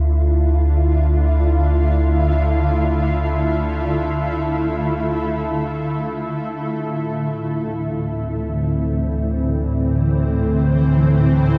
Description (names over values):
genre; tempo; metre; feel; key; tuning
ambient; free time; none; none; D minor; A4 = 437 Hz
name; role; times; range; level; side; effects
shimmering ambient pad; sustained chords; 0.0-11.6 s; A2 to F4; -23 LUFS; equal; chorus, built-in reverb
deep rumbling drone; bass; 0.0-11.6 s; D2; -22 LUFS; equal; built-in reverb
organ-like drone; drone; 8.0-11.6 s; D3; -22 LUFS; equal; ensemble chorus, built-in reverb
room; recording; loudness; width
wet huge ambient reverb, RT60 7.5 s; dark, warm production; -19 LUFS; mono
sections
0.0-11.6 A section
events
fade-in on ambient pad 0.0-11.6; fade-out on synth drone 0.0-11.6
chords
0.0 Dm; 6.7 Am/D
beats
free time